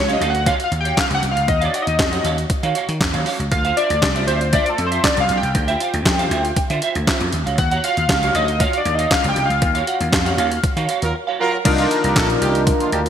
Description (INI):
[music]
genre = early-eighties boogie funk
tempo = 118 BPM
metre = 4/4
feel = straight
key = unclear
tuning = A4 = 444 Hz
[part]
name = chorused polysynth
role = accompaniment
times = 0.0-13.1 s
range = D4 to G5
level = -20 LUFS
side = left 1 dB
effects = none
[part]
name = vintage slap bass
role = bass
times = 0.0-13.1 s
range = Bb1 to Eb3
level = -22 LUFS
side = equal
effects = none
[part]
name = semi-hollow electric guitar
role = riff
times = 0.1-11.6 s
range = F4 to Gb5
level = -24 LUFS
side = right 5 dB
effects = ensemble chorus
[part]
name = crisp 8-bit digital drum machine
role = drums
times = 0.1-13.1 s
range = crash cymbal, handclaps, hi-hat, kick drum, snare drum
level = -20 LUFS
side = equal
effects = overdrive, gated reverb
[part]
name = clear horn section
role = second line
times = 11.0-13.0 s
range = D3 to Bb4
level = -23 LUFS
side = right 3 dB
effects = none
[sound]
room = moderate lush hall reverb, RT60 2.6 s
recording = bright 1980s-style digital production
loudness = -16 LUFS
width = side -9 dB against mid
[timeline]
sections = 0.0-11.7 A section; 11.7-13.1 B section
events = analog polysynth solo 0.0-11.7; band accent 9.6-11.7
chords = 0.0 Ebm9; 3.5 Dm9; 7.3 Ebm9; 11.7 Cm11